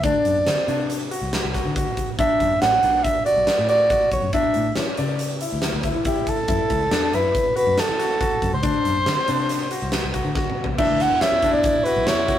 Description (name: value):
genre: progressive instrumental, band music in an uneven meter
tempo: 140 BPM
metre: 5/4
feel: straight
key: unclear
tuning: A4 = 442 Hz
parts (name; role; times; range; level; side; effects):
- mellow soprano saxophone; melody; 0.0-12.4 s; G4 to F#5; -20 LUFS; right 1 dB; none
- bright grand piano; arpeggios; 0.0-12.4 s; C4 to D5; -26 LUFS; left 6 dB; none
- fingered electric bass; bass; 0.0-12.4 s; A1 to E3; -28 LUFS; left 1 dB; none
- huge arena drum kit; drums; 0.0-12.4 s; crash cymbal, hi-hat, kick drum, snare drum, toms; -25 LUFS; right 1 dB; none
- edgy alto saxophone; second line; 10.8-12.4 s; E4; -26 LUFS; right 2 dB; none
room: light reverb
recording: rough rehearsal-room recording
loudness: -18 LUFS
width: side -11 dB against mid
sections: 0.0-10.8 A section; 10.8-12.4 B section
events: drum fill 10.4-10.8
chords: 0.0 D7; 2.2 Bm7; 4.3 Aadd11 (rootless); 6.5 F#m7; 8.6 D7; 10.8 Esus2